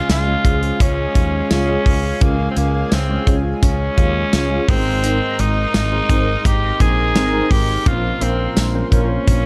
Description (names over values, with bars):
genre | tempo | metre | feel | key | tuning
1980s-style pop | 85 BPM | 4/4 | straight | unclear | A4 = 440 Hz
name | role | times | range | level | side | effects
raspy tenor saxophone | melody | 0.0-9.5 s | Bb3 to Ab4 | -24 LUFS | equal | none
raw garage guitar | accompaniment | 0.0-9.5 s | Ab2 to Db4 | -35 LUFS | equal | none
tine electric piano | accompaniment | 0.0-9.5 s | Ab2 to Eb5 | -27 LUFS | equal | analog chorus
chorused pulse-width pad | sustained chords | 0.0-9.5 s | Ab4 to C6 | -32 LUFS | equal | none
woody fretless electric bass | bass | 0.1-9.5 s | Ab1 to Eb2 | -23 LUFS | equal | none
modern studio drum kit | drums | 0.1-9.4 s | hi-hat, kick drum, snare drum, tambourine | -20 LUFS | equal | none
mellow synth brass | stabs | 0.4-9.1 s | C4 to Db5 | -28 LUFS | equal | chorus
room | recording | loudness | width
small room ambience | dark, warm production | -17 LUFS | mono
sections
0.0-9.5 A section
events
none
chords
0.0 Db; 4.7 Abadd9; 7.9 Bbmadd9